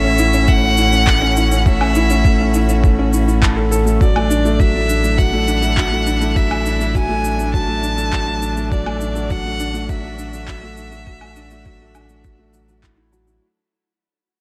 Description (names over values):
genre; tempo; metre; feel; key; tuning
piano and strings electronica; 102 BPM; 4/4; straight; unclear; A4 = 440 Hz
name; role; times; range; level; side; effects
clear violin; melody; 0.0-12.8 s; D5 to A5; -23 LUFS; equal; delay
bright string quartet; sustained chords; 0.0-13.4 s; A2 to F#4; -29 LUFS; equal; none
felt-muted upright piano; riff; 0.0-13.4 s; F#3 to A5; -23 LUFS; equal; delay
round analog bass; bass; 0.0-13.4 s; A1; -22 LUFS; equal; tube saturation, sidechain pumping
electronic shaker, handclaps and woodblock; drums; 0.2-13.4 s; none; -28 LUFS; equal; overdrive
electronic kick drum; drums; 0.5-13.0 s; none; -19 LUFS; equal; none
room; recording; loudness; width
small room ambience; none; -16 LUFS; mono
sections
0.0-13.4 A section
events
drop 0.0-13.4; fade-out 4.0-13.4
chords
0.0 A; 4.0 Dadd9/A